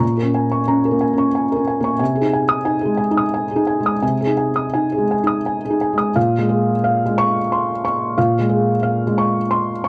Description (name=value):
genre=neoclassical minimalist piano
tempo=83-93 BPM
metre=3/4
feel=rubato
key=Bb minor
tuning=A4 = 439 Hz
part: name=felt-muted upright piano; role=solo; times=0.0-9.9 s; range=Bb2 to Eb6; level=-18 LUFS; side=equal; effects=none
room=light reverb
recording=dry, close 1970s-style studio recording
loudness=-18 LUFS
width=mono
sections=0.0-6.2 A section; 6.2-9.9 B section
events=none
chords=0.0 Bbm7; 2.0 Ab/C; 6.2 Bbm7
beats=| 0.02 0.69 1.35 | 2.00 2.65 3.32 | 4.02 4.74 5.46 | 6.16 6.83 7.50 | 8.16 8.83 9.51